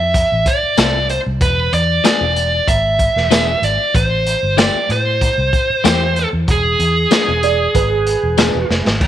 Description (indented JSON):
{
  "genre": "straight-eighth soul blues",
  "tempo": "95 BPM",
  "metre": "4/4",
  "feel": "swing 53% on 16ths",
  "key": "unclear",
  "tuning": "A4 = 441 Hz",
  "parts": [
    { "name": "dark smooth lead guitar", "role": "melody", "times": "0.0-8.7 s", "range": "G#4 to E5", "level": "-16 LUFS", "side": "right 1 dB", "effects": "overdrive" },
    { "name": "vintage muted fingered electric bass", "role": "bass", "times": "0.0-9.1 s", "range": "E1 to A2", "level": "-19 LUFS", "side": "equal", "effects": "none" },
    { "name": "crunchy breakbeat drum kit", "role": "drums", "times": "0.1-9.1 s", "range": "crash cymbal, hi-hat, kick drum, snare drum, tambourine", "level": "-17 LUFS", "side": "equal", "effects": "none" },
    { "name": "direct-recorded clean electric guitar", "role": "stabs", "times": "0.8-8.6 s", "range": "E3 to A4", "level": "-22 LUFS", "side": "left 13 dB", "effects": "slapback echo" },
    { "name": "dark upright piano", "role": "second line", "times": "7.4-8.8 s", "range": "G#4 to D5", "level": "-20 LUFS", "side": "right 11 dB", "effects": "none" }
  ],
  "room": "light reverb, small room ambience",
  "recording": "1960s-style stereo with parts hard left and right",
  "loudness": "-13 LUFS",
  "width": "side -11 dB against mid",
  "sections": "0.0-9.0 A section",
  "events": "drum fill 8.7-9.0",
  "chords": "0.0 Fmaj7; 1.4 E7b9; 3.9 Am7; 6.5 E7b9",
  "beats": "0.14 0.78 | 1.41 2.04 2.68 3.31 | 3.94 4.58 5.21 5.84 | 6.48 7.11 7.74 8.38 | 9.01"
}